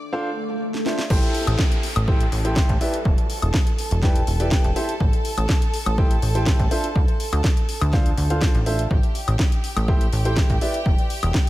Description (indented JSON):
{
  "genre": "piano house",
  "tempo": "123 BPM",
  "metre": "4/4",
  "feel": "straight",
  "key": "A minor",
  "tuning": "A4 = 440 Hz",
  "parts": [
    { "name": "clear studio violin section", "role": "sustained chords", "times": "0.0-11.5 s", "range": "G4 to D6", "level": "-32 LUFS", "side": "right 1 dB", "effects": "sidechain pumping" },
    { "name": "deep dark ambient pad", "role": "texture", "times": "0.0-0.6 s", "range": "D4 to A4", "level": "-43 LUFS", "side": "left 2 dB", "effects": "chorus, built-in reverb, sidechain pumping" },
    { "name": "warm upright piano", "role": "riff", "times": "0.1-10.8 s", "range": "D4 to G5", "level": "-27 LUFS", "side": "equal", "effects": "sidechain pumping, tape echo" },
    { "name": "swell and downlifter", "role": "sound effects", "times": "0.3-5.0 s", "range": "none", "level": "-32 LUFS", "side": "equal", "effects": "none" },
    { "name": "house drum kit", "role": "drums", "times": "0.7-11.5 s", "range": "crash cymbal, hi-hat, snare drum, woodblock", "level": "-28 LUFS", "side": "left 1 dB", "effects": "overdrive" },
    { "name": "plucky analog bass", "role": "bass", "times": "1.1-11.3 s", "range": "E1 to D2", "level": "-22 LUFS", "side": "equal", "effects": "sidechain pumping" },
    { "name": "electronic kick drum", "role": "drums", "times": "1.1-11.4 s", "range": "none", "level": "-20 LUFS", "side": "equal", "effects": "none" }
  ],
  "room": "light reverb",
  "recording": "none",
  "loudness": "-18 LUFS",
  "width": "side -16 dB against mid",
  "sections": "0.0-1.1 A section; 1.1-11.5 B section",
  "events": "swell 0.3-1.1; drum fill 0.7-1.1; drop 1.1-11.5",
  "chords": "0.0 Dm7; 1.1 Am7; 2.8 Em7; 4.8 Am7; 6.7 Dm7; 8.9 Am7; 10.6 Em7",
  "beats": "0.13 0.61 | 1.10 1.59 2.08 2.56 | 3.05 3.54 4.03 4.52 | 5.00 5.49 5.98 6.47 | 6.96 7.44 7.93 8.42 | 8.91 9.39 9.88 10.37 | 10.86 11.35"
}